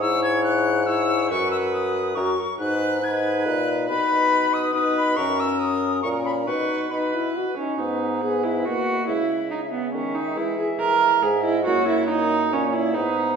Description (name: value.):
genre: classical, renaissance-style consort dance.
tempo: 140 BPM.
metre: 3/4.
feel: straight.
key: unclear.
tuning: A4 = 441 Hz.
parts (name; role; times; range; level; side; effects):
silver concert flute; melody; 0.0-13.4 s; B4 to G#6; -26 LUFS; left 4 dB; none.
warm viola; second line; 0.0-13.4 s; B3 to C#5; -24 LUFS; right 4 dB; none.
warm trombone; accompaniment; 0.0-13.4 s; G#3 to F#4; -28 LUFS; left 3 dB; none.
mellow bassoon; bass; 0.0-13.4 s; F#2 to E3; -27 LUFS; left 1 dB; none.
room: wet recital hall reverb, RT60 1.3 s.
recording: heard from further back in the room.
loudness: -20 LUFS.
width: side -6 dB against mid.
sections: 0.0-7.8 A section; 7.8-13.4 B section.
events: none.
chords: 0.0 C#m/G#; 1.3 F#sus4; 2.6 G#m; 3.9 B; 5.2 F#; 6.5 B; 7.8 G#m; 9.1 C#m; 10.4 E; 11.7 F#.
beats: | 0.01 0.44 0.87 | 1.30 1.73 2.16 | 2.60 3.03 3.46 | 3.89 4.32 4.75 | 5.17 5.60 6.04 | 6.47 6.91 7.35 | 7.79 8.22 8.65 | 9.08 9.52 9.94 | 10.37 10.80 11.23 | 11.66 12.09 12.52 | 12.94.